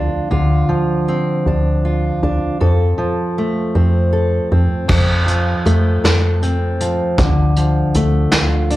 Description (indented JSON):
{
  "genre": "indie folk with a building arrangement",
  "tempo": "52 BPM (dotted quarters)",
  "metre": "6/8",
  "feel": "straight",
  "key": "F major",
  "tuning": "A4 = 440 Hz",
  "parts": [
    { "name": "fingerpicked steel-string acoustic guitar", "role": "accompaniment", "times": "0.0-8.8 s", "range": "F2 to A4", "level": "-17 LUFS", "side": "equal", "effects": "slapback echo" },
    { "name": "woody FM bass", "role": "bass", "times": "0.0-8.8 s", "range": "D2 to F2", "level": "-16 LUFS", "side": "equal", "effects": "none" },
    { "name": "vintage brush drum kit", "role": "drums", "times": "4.9-8.8 s", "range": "crash cymbal, hi-hat, kick drum, snare drum", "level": "-18 LUFS", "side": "equal", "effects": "none" }
  ],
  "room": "little or no reverb",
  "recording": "live gig heard through the venue's PA, club reverb",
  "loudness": "-14 LUFS",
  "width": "side -16 dB against mid",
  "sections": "0.0-4.9 A section; 4.9-8.8 B section",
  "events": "none",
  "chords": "0.3 Dm7; 2.6 F; 7.2 Dm"
}